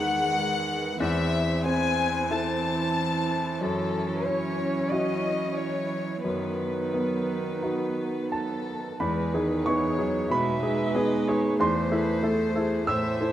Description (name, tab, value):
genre	neoclassical piano and strings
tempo	84-94 BPM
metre	4/4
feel	rubato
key	E major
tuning	A4 = 440 Hz
part	warm chamber violin section	melody	0.0-13.3 s	A4 to A5	-30 LUFS	left 4 dB	tape echo
part	clear cello	second line	0.0-13.3 s	D#3 to A3	-33 LUFS	right 4 dB	none
part	clear baby grand piano	accompaniment	0.0-13.3 s	E2 to E6	-27 LUFS	equal	none
part	dark viola	accompaniment	0.0-13.3 s	G#3 to E5	-33 LUFS	right 3 dB	none
part	hollow soft pad	sustained chords	0.0-13.3 s	D#3 to C#5	-37 LUFS	right 2 dB	none
room	moderate lush hall reverb, RT60 2.8 s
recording	rough home demo mix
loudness	-24 LUFS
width	side -12 dB against mid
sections	0.0-9.0 A section; 9.0-13.3 B section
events	none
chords	0.0 Emaj7; 1.0 Am/E; 3.6 F#m7; 6.2 B/F#; 9.0 Emaj7; 11.6 Am/E